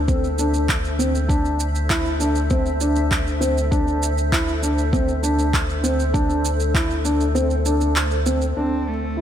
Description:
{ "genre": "piano and strings electronica", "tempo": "99 BPM", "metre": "4/4", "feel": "straight", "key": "unclear", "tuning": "A4 = 440 Hz", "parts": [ { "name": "granular cloud pad", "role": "sustained chords", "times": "0.0-9.2 s", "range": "D4 to E5", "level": "-27 LUFS", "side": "left 1 dB", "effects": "built-in reverb, sidechain pumping" }, { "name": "warm sub bass", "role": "bass", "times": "0.0-9.2 s", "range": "D2", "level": "-23 LUFS", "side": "equal", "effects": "sidechain pumping" }, { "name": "felt-muted upright piano", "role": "riff", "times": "0.1-9.2 s", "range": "C4 to E4", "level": "-23 LUFS", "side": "equal", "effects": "digital delay" }, { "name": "electronic kick drum", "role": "drums", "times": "0.1-6.9 s", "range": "none", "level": "-22 LUFS", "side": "equal", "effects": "none" }, { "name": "electronic shaker and handclaps", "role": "drums", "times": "0.1-8.5 s", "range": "none", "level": "-26 LUFS", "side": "right 2 dB", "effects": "none" }, { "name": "warm cello", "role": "melody", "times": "8.6-9.2 s", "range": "A3 to C4", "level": "-26 LUFS", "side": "right 2 dB", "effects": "none" } ], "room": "light reverb", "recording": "none", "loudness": "-18 LUFS", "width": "side -10 dB against mid", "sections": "0.0-8.6 A section", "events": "kick drops out 7.4-8.6", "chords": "0.0 Am/D", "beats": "0.08 0.69 | 1.29 1.90 2.50 3.11 | 3.72 4.32 4.93 5.54 | 6.14 6.75 7.35 7.96 | 8.57 9.17" }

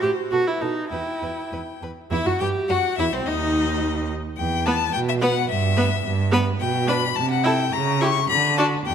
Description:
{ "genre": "quick classical-period movement for string quartet", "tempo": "106 BPM", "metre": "2/4", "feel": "rubato", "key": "E minor", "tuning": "A4 = 439 Hz", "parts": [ { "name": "clear violin", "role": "melody", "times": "0.0-8.9 s", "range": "B4 to C#6", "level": "-25 LUFS", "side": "left 10 dB", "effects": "none" }, { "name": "clear violin", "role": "second line", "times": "0.0-8.9 s", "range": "C4 to C5", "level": "-29 LUFS", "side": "left 4 dB", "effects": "none" }, { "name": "clear viola", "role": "accompaniment", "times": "0.0-8.9 s", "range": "B3 to G4", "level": "-25 LUFS", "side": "right 2 dB", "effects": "none" }, { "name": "rich cello", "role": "bass", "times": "0.0-8.9 s", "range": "C2 to D3", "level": "-24 LUFS", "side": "right 4 dB", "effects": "none" } ], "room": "moderate concert hall reverb, RT60 2.5 s", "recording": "none", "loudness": "-20 LUFS", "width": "side -8 dB against mid", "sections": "0.0-2.1 A section; 2.1-8.9 B section", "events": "none", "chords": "0.3 B7; 0.9 Em; 3.3 N.C.; 4.4 E5; 5.5 Em/G; 6.6 G/B; 7.2 Am/C; 7.7 C#dim7; 8.3 D", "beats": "0.32 | 0.92 1.52 | 2.12 2.70 | 3.27 3.83 | 4.39 4.94 | 5.50 6.05 | 6.60 7.16 | 7.73 8.29 | 8.87" }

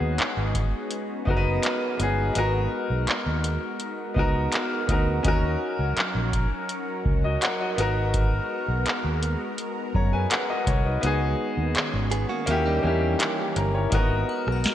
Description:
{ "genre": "contemporary R&B", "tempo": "83 BPM", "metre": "4/4", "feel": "straight", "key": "G# minor", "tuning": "A4 = 440 Hz", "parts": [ { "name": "clear baby grand piano", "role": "accompaniment", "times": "0.0-14.7 s", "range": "A#3 to A#5", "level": "-27 LUFS", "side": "left 2 dB", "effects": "lush chorus" }, { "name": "lush unison pad", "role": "sustained chords", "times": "0.0-14.7 s", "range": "D#3 to A#4", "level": "-32 LUFS", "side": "equal", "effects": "chorus, phaser" }, { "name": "fingered electric bass", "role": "bass", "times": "0.0-14.7 s", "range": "F#1 to F#2", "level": "-26 LUFS", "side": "equal", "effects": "none" }, { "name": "booming analog drum machine", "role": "drums", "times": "0.2-14.7 s", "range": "handclaps, hi-hat, kick drum, rim click, snare drum", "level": "-26 LUFS", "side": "equal", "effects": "gated reverb" }, { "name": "direct-recorded clean electric guitar", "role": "arpeggios", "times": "12.1-13.7 s", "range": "G3 to G#4", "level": "-32 LUFS", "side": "right 6 dB", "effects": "digital delay" }, { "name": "glassy synth bell", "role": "texture", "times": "14.3-14.7 s", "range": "F#5 to A#5", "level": "-39 LUFS", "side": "equal", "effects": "chorus, phaser, digital delay" } ], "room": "moderate lush hall reverb, RT60 2.8 s", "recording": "bright 1980s-style digital production", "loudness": "-22 LUFS", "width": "side -11 dB against mid", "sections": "0.0-13.9 A section", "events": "kick muted 2.4-3.1, 11.0-13.9", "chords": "0.0 C#9sus4; 2.4 G#m9; 5.2 D#m7; 7.8 G#m9; 11.0 C#9sus4; 12.5 D#7b9; 13.9 G#m9", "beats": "0.19 0.91 1.63 | 2.35 3.08 3.80 4.52 | 5.25 5.97 6.69 7.42 | 8.14 8.86 9.58 10.31 | 11.03 11.75 12.48 13.20 | 13.92 14.64" }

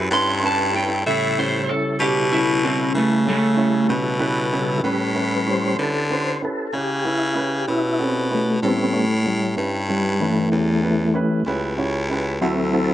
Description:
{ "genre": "slow blues", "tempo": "63 BPM (dotted quarters)", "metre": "12/8", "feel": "straight", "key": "A mixolydian", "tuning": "A4 = 440 Hz", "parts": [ { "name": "warm upright piano", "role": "accompaniment", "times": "0.0-12.9 s", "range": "C4 to C#5", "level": "-26 LUFS", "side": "right 2 dB", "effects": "none" }, { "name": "tonewheel organ", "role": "sustained chords", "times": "0.0-12.9 s", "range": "C#3 to C5", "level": "-23 LUFS", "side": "left 1 dB", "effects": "slow rotary speaker, chorus vibrato" }, { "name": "growling baritone saxophone", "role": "bass", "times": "0.0-12.9 s", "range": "C#2 to D3", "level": "-23 LUFS", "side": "left 1 dB", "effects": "none" }, { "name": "electric slide guitar", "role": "melody", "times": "0.1-3.9 s", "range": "A3 to C6", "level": "-20 LUFS", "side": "right 1 dB", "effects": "none" } ], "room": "light reverb, small room ambience", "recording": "dark, warm production, nothing above 10.9 kHz", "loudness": "-18 LUFS", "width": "side -12 dB against mid", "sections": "0.0-4.8 A section; 4.8-12.9 A section", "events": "electric slide guitar solo 0.0-4.8; tonewheel organ solo 4.8-12.9", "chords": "0.0 A7; 12.4 D7", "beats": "0.12 | 1.07 2.01 2.96 3.90 | 4.84 5.79 6.74 7.68 | 8.63 9.57 10.52 11.47 | 12.41" }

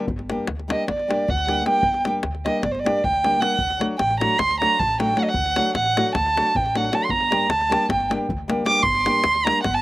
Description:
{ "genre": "balkan folk, Balkan wedding band", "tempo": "308 BPM (eighths)", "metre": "9/8", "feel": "straight", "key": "G harmonic minor", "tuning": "A4 = 445 Hz", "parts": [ { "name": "nylon-string guitar", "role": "accompaniment", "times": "0.0-9.6 s", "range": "F#3 to G4", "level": "-25 LUFS", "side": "left 2 dB", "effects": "none" }, { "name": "davul", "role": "percussion", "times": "0.0-9.7 s", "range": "none", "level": "-28 LUFS", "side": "left 3 dB", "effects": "none" }, { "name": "upright bass", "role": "bass", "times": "0.1-9.8 s", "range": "G1 to D2", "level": "-30 LUFS", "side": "equal", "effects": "none" }, { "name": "dark violin", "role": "melody", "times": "0.7-9.8 s", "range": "C5 to D6", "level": "-20 LUFS", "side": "right 2 dB", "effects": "none" } ], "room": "little or no reverb", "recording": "recorded outdoors, with no room sound", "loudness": "-18 LUFS", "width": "side -17 dB against mid", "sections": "0.1-9.8 A section", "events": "violin solo 0.1-9.8", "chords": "0.1 Gm; 3.6 D; 7.1 Gm", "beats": "| 0.08 0.28 0.47 0.67 0.86 1.05 1.25 1.44 1.64 | 1.83 2.03 2.22 2.42 2.61 2.81 3.00 3.20 3.39 | 3.59 3.78 3.98 4.17 4.37 4.56 4.75 4.95 5.14 | 5.34 5.53 5.73 5.92 6.12 6.31 6.51 6.70 6.90 | 7.09 7.29 7.48 7.67 7.87 8.06 8.26 8.45 8.65 | 8.84 9.04 9.23 9.42 9.62 9.81" }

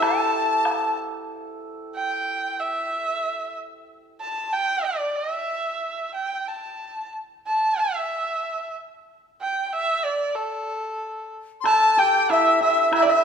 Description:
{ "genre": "chinese traditional, Chinese chamber ensemble", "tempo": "93 BPM", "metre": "2/4", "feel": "rubato", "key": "A yu mode", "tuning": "A4 = 440 Hz", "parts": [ { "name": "rich erhu", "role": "melody", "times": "0.0-13.2 s", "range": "A4 to A5", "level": "-23 LUFS", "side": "right 1 dB", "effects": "none" }, { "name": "bright dizi", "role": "second line", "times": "0.0-1.0, 11.6-13.2 s", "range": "E5 to C6", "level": "-22 LUFS", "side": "left 6 dB", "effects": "none" }, { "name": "hammered dulcimer", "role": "second line", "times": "0.0-3.0, 11.6-13.2 s", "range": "E4 to C5", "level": "-25 LUFS", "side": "right 5 dB", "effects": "none" }, { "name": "woodblock", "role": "percussion", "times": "0.0-0.8, 11.7-13.1 s", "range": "none", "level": "-30 LUFS", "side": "left 2 dB", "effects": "none" } ], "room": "moderate concert hall reverb, RT60 1.9 s", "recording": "minimal, uncompressed stereo recording", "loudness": "-21 LUFS", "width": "side -7 dB against mid", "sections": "0.0-1.3 A section; 1.3-11.7 B section; 11.7-13.2 A section", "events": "none", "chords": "none", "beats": "| 0.02 0.66 | 1.31 1.96 | 2.60 3.25 | 3.89 4.53 | 5.17 5.82 | 6.48 7.14 | 7.79 8.43 | 9.07 9.71 | 10.36 11.01 | 11.66 12.30 | 12.93" }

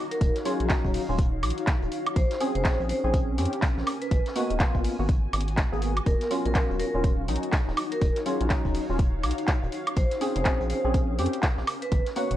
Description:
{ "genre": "deep house", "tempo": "123 BPM", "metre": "4/4", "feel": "swing 60% on 16ths", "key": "Eb minor", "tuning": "A4 = 440 Hz", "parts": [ { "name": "granular cloud pad", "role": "texture", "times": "0.0-12.4 s", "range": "Cb4 to Ab5", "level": "-34 LUFS", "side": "left 2 dB", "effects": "built-in reverb, sidechain pumping" }, { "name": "vibraphone with medium hard mallets", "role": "melody", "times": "0.1-12.3 s", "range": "Ab4 to Eb5", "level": "-32 LUFS", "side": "equal", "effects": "tape echo" }, { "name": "house drum kit", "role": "drums", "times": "0.1-12.4 s", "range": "handclaps, hi-hat, woodblock", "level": "-31 LUFS", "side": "equal", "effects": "none" }, { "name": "vintage brush drum kit", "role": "drums", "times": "0.1-12.3 s", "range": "hi-hat, snare drum", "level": "-44 LUFS", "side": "equal", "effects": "high-pass filter on hats, high-pass filter on snare, high-pass filter on room" }, { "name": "rubbery square bass", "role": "bass", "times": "0.2-12.4 s", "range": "Eb1 to F2", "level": "-29 LUFS", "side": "equal", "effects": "sidechain pumping" }, { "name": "electronic kick drum", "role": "drums", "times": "0.2-12.0 s", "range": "none", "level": "-24 LUFS", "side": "equal", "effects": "none" }, { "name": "percussive organ stab", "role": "stabs", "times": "0.5-12.4 s", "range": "Gb3 to Ab4", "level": "-30 LUFS", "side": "equal", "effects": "ensemble chorus, sidechain pumping, tape echo" } ], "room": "light reverb, small room ambience", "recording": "dry, gritty hardware recording", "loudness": "-23 LUFS", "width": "side -13 dB against mid", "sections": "0.0-12.4 A section", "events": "none", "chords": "0.0 Ebm9; 1.9 Bbm9; 3.9 Abm9; 6.1 Ebm9; 9.7 Bbm9; 11.7 Abm9", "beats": "| 0.21 0.70 1.19 1.67 | 2.16 2.65 3.14 3.62 | 4.11 4.60 5.09 5.58 | 6.06 6.55 7.04 7.53 | 8.02 8.50 8.99 9.48 | 9.97 10.45 10.94 11.43 | 11.92" }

